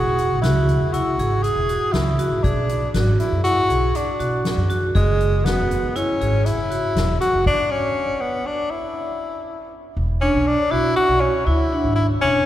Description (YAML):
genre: progressive instrumental, band music in an uneven meter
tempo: 120 BPM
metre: 5/4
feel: straight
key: E mixolydian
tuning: A4 = 440 Hz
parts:
  - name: breathy tenor saxophone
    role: melody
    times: 0.0-12.5 s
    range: G#3 to G#4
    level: -21 LUFS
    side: left 2 dB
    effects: none
  - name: vibraphone with hard mallets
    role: arpeggios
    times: 0.0-12.4 s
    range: D4 to G#4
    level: -24 LUFS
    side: right 3 dB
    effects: none
  - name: upright bass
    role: bass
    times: 0.0-12.5 s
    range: E1 to B2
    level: -22 LUFS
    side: equal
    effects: none
  - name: soft-mallet drum kit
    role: drums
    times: 0.2-7.6 s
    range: crash cymbal, hi-hat, kick drum, snare drum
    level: -26 LUFS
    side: left 1 dB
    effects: none
room: wet cathedral reverb, RT60 4.1 s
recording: recorded in a church or concert hall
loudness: -17 LUFS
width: side -12 dB against mid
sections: 0.0-10.0 A section; 10.0-12.5 B section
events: stop 7.5-10.0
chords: 0.0 Eadd9; 2.4 Bm; 5.0 F#sus2; 7.5 N.C.; 10.0 E9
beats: 0.43 0.93 1.44 1.94 | 2.44 2.94 3.44 3.95 4.45 | 4.95 5.45 5.95 6.46 6.96 | 7.46 7.96 8.46 8.96 9.46 | 9.96 10.46 10.96 11.47 11.97